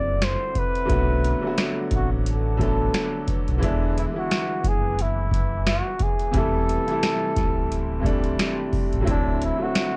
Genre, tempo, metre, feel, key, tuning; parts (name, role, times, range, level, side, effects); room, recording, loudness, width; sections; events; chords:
lo-fi hip hop; 88 BPM; 4/4; swing 56% on 16ths; A dorian; A4 = 439 Hz
breathy flugelhorn; melody; 0.0-10.0 s; D4 to D5; -30 LUFS; equal; cassette tape, plate reverb
clear upright piano; accompaniment; 0.0-10.0 s; C3 to A4; -29 LUFS; equal; cassette tape, plate reverb
deep dark ambient pad; sustained chords; 0.0-10.0 s; C4 to D6; -41 LUFS; equal
sub bass with octave; bass; 0.0-9.5 s; D1 to B1; -28 LUFS; equal
booming analog drum machine; drums; 0.2-9.9 s; finger snaps, hi-hat, kick drum, snare drum; -28 LUFS; equal; vintage 12-bit sampler grit, cassette tape
light reverb; home recording on cassette; -23 LUFS; mono
0.0-9.1 A section
0.0 D9; 0.9 Bm7; 3.6 E7; 6.3 Am7; 9.1 D9